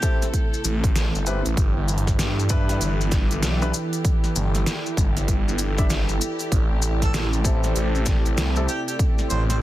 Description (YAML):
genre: glitch hop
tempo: 97 BPM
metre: 4/4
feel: swing 62% on 16ths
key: A minor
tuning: A4 = 440 Hz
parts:
  - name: mellow harmonica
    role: melody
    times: 0.0-0.2, 7.0-9.6 s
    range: G4 to C5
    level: -34 LUFS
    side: right 2 dB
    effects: vintage 12-bit sampler grit, dub echo
  - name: warm studio string section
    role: sustained chords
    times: 0.0-9.6 s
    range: C3 to A4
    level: -32 LUFS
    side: right 1 dB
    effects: vintage 12-bit sampler grit, sidechain pumping
  - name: clear grand piano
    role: stabs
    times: 0.0-8.7 s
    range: C4 to E5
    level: -32 LUFS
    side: left 2 dB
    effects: sidechain pumping, dub echo
  - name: dubstep drum kit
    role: drums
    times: 0.0-9.6 s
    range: hi-hat, snare drum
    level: -28 LUFS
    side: equal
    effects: none
  - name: electronic kick drum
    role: drums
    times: 0.0-9.1 s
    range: none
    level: -22 LUFS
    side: equal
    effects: none
  - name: maracas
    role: percussion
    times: 0.0-9.6 s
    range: none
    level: -32 LUFS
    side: left 4 dB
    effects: none
  - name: airy breathy pad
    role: texture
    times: 0.0-9.6 s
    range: E4 to G5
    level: -32 LUFS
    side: right 2 dB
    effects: chorus, sidechain pumping
  - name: phased detuned saw bass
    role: bass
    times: 0.6-9.6 s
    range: G1 to G2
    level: -23 LUFS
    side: equal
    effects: phaser, overdrive
room: small room ambience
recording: dense, heavily limited modern master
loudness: -20 LUFS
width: side -15 dB against mid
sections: 0.0-9.6 A section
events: none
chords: 0.0 Am7; 1.6 G6; 6.5 Am7